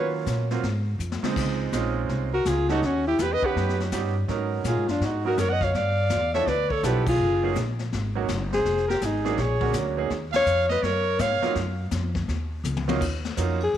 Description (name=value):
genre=jazz, small-group swing and bop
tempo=165 BPM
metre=4/4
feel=swing 64% on 8ths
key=Eb minor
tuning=A4 = 440 Hz
part: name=mellow alto saxophone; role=melody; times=0.0-0.1, 2.3-13.8 s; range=Db4 to Eb5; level=-25 LUFS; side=left 2 dB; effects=none
part: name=bright trumpet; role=second line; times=0.0-0.1, 2.3-11.6 s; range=F4 to Gb5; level=-30 LUFS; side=right 9 dB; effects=none
part: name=bright grand piano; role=accompaniment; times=0.0-13.6 s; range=Db2 to F#5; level=-30 LUFS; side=right 9 dB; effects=none
part: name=upright bass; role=bass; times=0.0-13.8 s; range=F1 to Eb3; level=-28 LUFS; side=equal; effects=none
part: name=jazz brush drum kit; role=drums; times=0.3-13.8 s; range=brushed snare drum, crash cymbal, hi-hat, kick drum, ride cymbal, snare drum, toms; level=-32 LUFS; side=left 5 dB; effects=none
room=light reverb, small room reverb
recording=1960s-style stereo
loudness=-22 LUFS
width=side -10 dB against mid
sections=0.0-1.4 A section; 1.4-13.0 B section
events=drum fill 1.0-1.4, 12.7-13.0; band accent 7.0, 10.3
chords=0.0 Ebm7; 0.6 Ab6; 1.4 Dbmaj7; 2.8 Eb7alt; 4.3 Abm11; 5.7 G13; 7.2 Gb69; 8.7 Fm7; 9.4 Bb7alt; 10.1 Ebm9